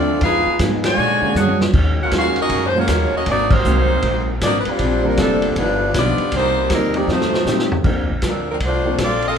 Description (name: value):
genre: jazz, big band swing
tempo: 157 BPM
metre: 4/4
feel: swing 63% on 8ths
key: unclear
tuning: A4 = 440 Hz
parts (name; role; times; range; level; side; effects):
- clear saxophone section; melody; 0.0-9.4 s; F3 to Ab5; -19 LUFS; equal; none
- warm trombone section; second line; 0.0-7.7 s; Ab2 to F#4; -26 LUFS; right 3 dB; none
- vintage hollow-body jazz guitar; accompaniment; 0.0-7.7 s; F2 to Ab4; -26 LUFS; left 2 dB; none
- warm concert grand piano; accompaniment; 0.0-9.0 s; D3 to C5; -25 LUFS; right 1 dB; none
- upright bass; bass; 0.0-9.4 s; F1 to Bb2; -22 LUFS; equal; none
- vintage drum kit; drums; 0.2-9.3 s; crash cymbal, hi-hat, kick drum, ride cymbal, snare drum, toms; -22 LUFS; equal; none
room: moderate large studio reverb, RT60 1.2 s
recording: band playing live in one room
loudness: -15 LUFS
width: side -7 dB against mid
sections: 0.0-7.8 A section; 7.8-9.4 B section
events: band accent 0.8, 3.5; drum fill 1.4-1.7, 7.1-7.8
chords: 0.2 Fm7b5; 1.0 Bb7alt; 1.7 Ebm11; 3.3 Ab9; 4.8 Bb69; 5.6 G7b13; 6.3 Cm7; 7.1 F7; 7.8 Bbmaj9